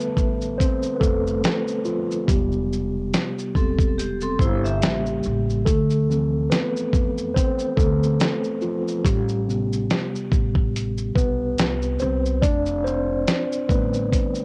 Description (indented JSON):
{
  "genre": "lo-fi hip hop",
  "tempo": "71 BPM",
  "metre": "4/4",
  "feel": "swing 57% on 16ths",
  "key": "A minor",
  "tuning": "A4 = 439 Hz",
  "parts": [
    { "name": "mellow tine electric piano", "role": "accompaniment", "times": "0.0-14.4 s", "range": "C3 to A5", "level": "-26 LUFS", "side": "equal", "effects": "cassette tape, low-pass filter" },
    { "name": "dusty soul sampler-style drum kit", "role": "drums", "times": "0.0-14.4 s", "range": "hi-hat, kick drum, shaker, snare drum", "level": "-24 LUFS", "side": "equal", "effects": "cassette tape" },
    { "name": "upright bass", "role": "bass", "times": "0.2-14.1 s", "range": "E1 to F2", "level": "-28 LUFS", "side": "equal", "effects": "none" },
    { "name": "vibraphone with medium hard mallets", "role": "second line", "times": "3.6-5.0 s", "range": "C4 to E5", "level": "-30 LUFS", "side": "equal", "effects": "low-pass filter, cassette tape, tape echo" }
  ],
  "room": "little or no reverb",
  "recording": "home recording on cassette",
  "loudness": "-22 LUFS",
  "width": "mono",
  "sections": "0.0-14.4 A section",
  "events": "tine electric piano solo 0.0-14.4",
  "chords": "0.0 F69; 2.3 Am9/E; 4.8 A7b9; 5.7 Dm9; 9.0 Am7; 12.4 F69"
}